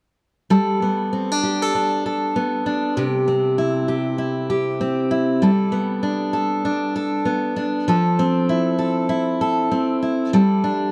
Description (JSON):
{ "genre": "pop", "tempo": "98 BPM", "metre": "4/4", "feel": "swing 60% on 16ths", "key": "G mixolydian", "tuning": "A4 = 440 Hz", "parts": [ { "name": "picked steel-string acoustic guitar", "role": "accompaniment", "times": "0.5-10.9 s", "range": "C3 to A4", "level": "-20 LUFS", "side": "equal", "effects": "none" } ], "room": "light reverb", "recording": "dark, warm production", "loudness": "-20 LUFS", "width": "mono", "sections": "0.5-10.3 A section", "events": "none", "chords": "0.5 Gadd9; 3.0 C; 5.4 Gadd9; 7.9 Fmaj7; 10.3 Gsus2" }